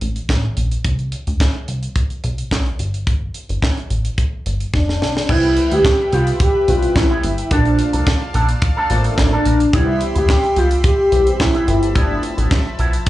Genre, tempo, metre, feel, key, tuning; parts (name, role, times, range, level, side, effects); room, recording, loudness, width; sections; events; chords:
early-eighties boogie funk; 108 BPM; 4/4; straight; C major; A4 = 444 Hz
plucky analog bass; bass; 0.0-13.1 s; F1 to D2; -19 LUFS; equal
tight funk drum kit; drums; 0.0-13.1 s; crash cymbal, handclaps, hi-hat, kick drum, snare drum; -19 LUFS; equal
warm velvety synth lead; melody; 4.7-12.5 s; D4 to G4; -17 LUFS; equal; chorus, slapback echo
barky tine electric piano; accompaniment; 5.3-12.6 s; Eb3 to B4; -26 LUFS; left 1 dB; overdrive, ensemble chorus, slapback echo
lush unison pad; sustained chords; 5.3-13.1 s; F3 to C6; -29 LUFS; left 1 dB; chorus
electric guitar with an envelope filter; riff; 5.3-13.1 s; F3 to Bb4; -24 LUFS; right 1 dB; analog chorus, slapback echo
little or no reverb; live gig heard through the venue's PA, club ambience, nothing above 10.8 kHz; -15 LUFS; side -15 dB against mid
0.0-5.3 A section; 5.3-13.1 B section
drum fill 4.7-5.3
0.0 N.C.; 2.8 G7(no3); 5.3 Cmaj7; 7.5 Bbmaj7; 9.7 Cmaj7; 11.7 G13